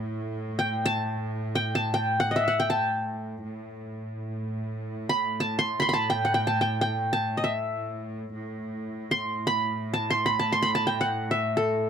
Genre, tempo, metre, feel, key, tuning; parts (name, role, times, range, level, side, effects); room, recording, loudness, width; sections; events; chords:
arabic; free time; A minor; A4 = 440 Hz
qanun; melody; 0.0-11.9 s; A4 to C6; -24 LUFS; equal
clear chamber cello section; drone; 0.0-11.9 s; A2; -32 LUFS; right 1 dB
little or no reverb; dry, close 1970s-style studio recording; -25 LUFS; side -8 dB against mid
0.0-11.9 A section